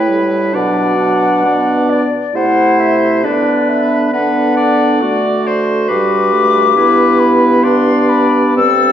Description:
classical, slow romantic movement for wind quintet; 67 BPM; 3/4; rubato; G major from 5.9 s; A4 = 440 Hz
concert flute; melody; 0.0-8.9 s; D5 to E6; -15 LUFS; left 5 dB
bright oboe; second line; 0.0-8.9 s; A4 to D5; -20 LUFS; left 2 dB
bright clarinet; accompaniment; 0.0-8.9 s; C4 to F#4; -17 LUFS; right 4 dB
dark French horn; accompaniment; 0.0-8.9 s; F#3 to C4; -18 LUFS; equal
mellow bassoon; bass; 0.0-8.9 s; G2 to D3; -17 LUFS; right 2 dB
wet recital hall reverb, RT60 1.3 s; recorded in a church or concert hall, nothing above 7.4 kHz; -10 LUFS; side -9 dB against mid
0.0-8.9 A section
0.0 Em; 0.5 Bm; 3.2 Bm/D; 5.9 G
| 0.55 1.45 2.34 | 3.24 4.14 5.02 | 5.89 6.76 7.64 | 8.57

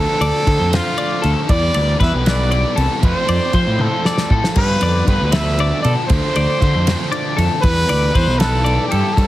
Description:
math rock and midwest emo; 78 BPM (dotted quarters); 6/8; straight; A4 = 440 Hz
clear trumpet; melody; 0.0-9.3 s; F4 to E5; -21 LUFS; right 1 dB; plate reverb
crunchy overdriven guitar; riff; 0.0-9.3 s; G2 to F4; -23 LUFS; equal
fuzz fingered electric bass; bass; 0.0-9.3 s; B1 to F3; -18 LUFS; equal; overdrive
clean electric guitar; arpeggios; 0.2-9.2 s; A4 to D5; -23 LUFS; left 4 dB; analog chorus, plate reverb
loose indie drum kit; drums; 0.2-9.3 s; crash cymbal, kick drum, ride cymbal, snare drum, toms; -20 LUFS; equal
light reverb; heavily compressed radio sound; -14 LUFS; side -15 dB against mid
0.0-9.3 A section
drum fill 3.8-4.6
0.0 Dm7; 1.5 Em7; 3.0 F; 4.6 G7; 6.1 Dm7; 7.6 Em7
0.71 | 1.48 2.25 | 3.02 3.79 | 4.55 5.32 | 6.09 6.86 | 7.63 8.39 | 9.16

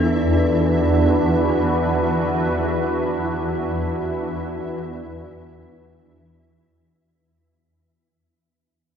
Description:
dark ambient drone; free time; A4 = 441 Hz
deep dark ambient pad; sustained chords; 0.0-7.1 s; D4 to B4; -22 LUFS; right 1 dB; chorus, built-in reverb
dark detuned synth bell; arpeggios; 0.0-7.1 s; D4 to A4; -29 LUFS; left 2 dB; chorus, tape echo
swarming drone; drone; 0.0-7.2 s; E2 to E3; -22 LUFS; equal; built-in reverb
flickering grainy texture; texture; 0.0-7.1 s; E4; -28 LUFS; equal; built-in reverb
wet huge ambient reverb, RT60 7.5 s; cassette tape; -18 LUFS; side -8 dB against mid
0.0-7.1 A section
fade-out 1.3-7.1
0.0 Esus2
free time

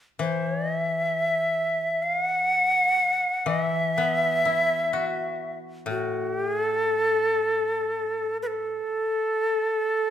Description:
japanese traditional, Japanese chamber music; free time; A4 = 440 Hz
breathy bright shakuhachi; melody; 0.2-10.1 s; A4 to F#5; -23 LUFS; equal
koto; accompaniment; 0.2-8.8 s; A2 to F#4; -31 LUFS; left 5 dB
moderate recital hall reverb, RT60 1.4 s; minimal, uncompressed stereo recording; -22 LUFS; side -10 dB against mid
0.0-10.1 A section
free time

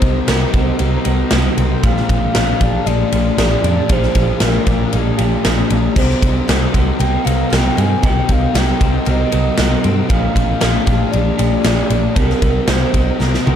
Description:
rock, shoegaze and dream pop; 116 BPM; 4/4; straight; C minor; A4 = 439 Hz
pure breathy sine lead; melody; 0.0-13.2 s; Bb4 to Ab5; -23 LUFS; equal; chorus, phaser, analog delay
ethereal airy pad; sustained chords; 0.0-13.6 s; G4 to Bb5; -28 LUFS; right 1 dB; ensemble chorus, built-in reverb
picked twelve-string acoustic guitar; arpeggios; 0.0-13.6 s; Eb3 to G4; -29 LUFS; equal; lush chorus, analog delay
electric guitar through a small old amp; riff; 0.0-13.6 s; Bb2 to Ab4; -22 LUFS; right 11 dB; reverse reverb
thick fuzz guitar; riff; 0.0-13.6 s; Bb2 to C4; -20 LUFS; left 10 dB; distortion, wide subtle chorus
vintage muted picked electric bass; bass; 0.0-13.6 s; Bb1 to G2; -17 LUFS; equal
huge arena drum kit; drums; 0.0-13.6 s; crash cymbal, kick drum, ride cymbal, snare drum, toms; -18 LUFS; equal
small room ambience; dark, warm production; -13 LUFS; side -9 dB against mid
0.0-13.6 A section
drum fill 13.2-13.6
0.0 Cm7; 1.8 Bb7; 6.0 Cm7; 10.1 Bb7; 12.2 Cm7
0.28 0.80 1.32 | 1.83 2.35 2.87 3.39 | 3.90 4.42 4.94 5.45 | 5.97 6.49 7.00 7.52 | 8.04 8.55 9.07 9.59 | 10.10 10.62 11.13 11.65 | 12.16 12.68 13.20

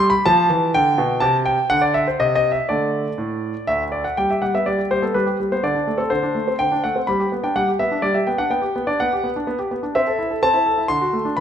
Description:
classical-period piano sonatina; 125 BPM; 3/4; straight; G major; A4 = 440 Hz
clear concert grand piano; solo; 0.0-11.4 s; D2 to C6; -17 LUFS; equal
moderate recital hall reverb, RT60 1.7 s; -17 LUFS; side -9 dB against mid
0.0-4.2 A section; 4.2-11.4 B section
0.0 G7; 1.2 C69; 2.2 N.C.; 2.7 D5; 4.2 G; 5.6 D5; 7.1 G; 8.5 G/B; 9.9 Am/C; 10.9 D7
0.25 0.73 | 1.21 1.69 2.18 | 2.67 3.17 3.66 | 4.16 4.65 5.14 | 5.63 6.11 6.59 | 7.07 7.55 8.03 | 8.51 8.98 9.46 | 9.93 10.41 10.88 | 11.36

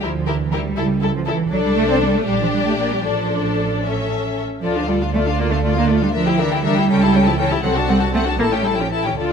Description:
quick classical-period movement for string orchestra; 79 BPM (dotted quarters); 6/8; uneven beats, rubato; D minor; A4 = 441 Hz
warm symphonic violin section; melody; 0.0-9.3 s; A4 to A5; -25 LUFS; left 8 dB
warm symphonic violin section; second line; 0.0-9.3 s; F4 to Bb4; -25 LUFS; left 6 dB
rich symphonic viola section; accompaniment; 0.0-9.3 s; C4 to F4; -23 LUFS; left 1 dB
rich symphonic cello section; bass; 0.0-9.3 s; D3 to C4; -20 LUFS; right 3 dB
rich symphonic double bass section; bass; 0.0-9.3 s; A1 to D2; -23 LUFS; right 4 dB
light reverb; close, detailed microphones; -16 LUFS; side -6 dB against mid
0.0-9.3 A section
0.0 Em7b5/D; 0.8 A7/C#; 1.5 D7(no3)/C; 2.3 Gm/Bb; 3.1 Dm/A; 3.8 A; 4.6 Dm; 6.1 Em7b5/D; 6.9 A7/C#; 7.6 D7/C; 8.4 A7
| 0.03 0.78 | 1.52 2.28 | 3.06 3.85 | 4.63 5.39 | 6.14 6.89 | 7.63 8.39 | 9.18

